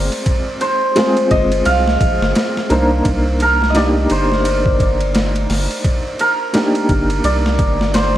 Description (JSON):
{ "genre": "trip hop", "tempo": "86 BPM", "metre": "4/4", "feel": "swing 60% on 16ths", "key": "C minor", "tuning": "A4 = 441 Hz", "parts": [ { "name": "cimbalom", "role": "melody", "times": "0.0-8.2 s", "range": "Bb4 to F5", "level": "-18 LUFS", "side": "right 1 dB", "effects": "dub echo" }, { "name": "felt-muted upright piano", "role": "accompaniment", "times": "0.0-8.2 s", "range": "Ab3 to C5", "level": "-20 LUFS", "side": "equal", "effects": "tremolo" }, { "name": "round analog bass", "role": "bass", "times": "0.0-8.2 s", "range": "G1 to C2", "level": "-18 LUFS", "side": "equal", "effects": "none" }, { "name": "boom bap sampler-style drum kit", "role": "drums", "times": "0.1-8.1 s", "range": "hi-hat, kick drum, ride cymbal, snare drum", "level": "-19 LUFS", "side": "equal", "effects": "overdrive" } ], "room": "light reverb, digital ambience", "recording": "vinyl crackle", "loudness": "-13 LUFS", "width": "side -12 dB against mid", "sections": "0.0-8.2 A section", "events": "none", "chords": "0.0 Fm; 3.1 Cm7" }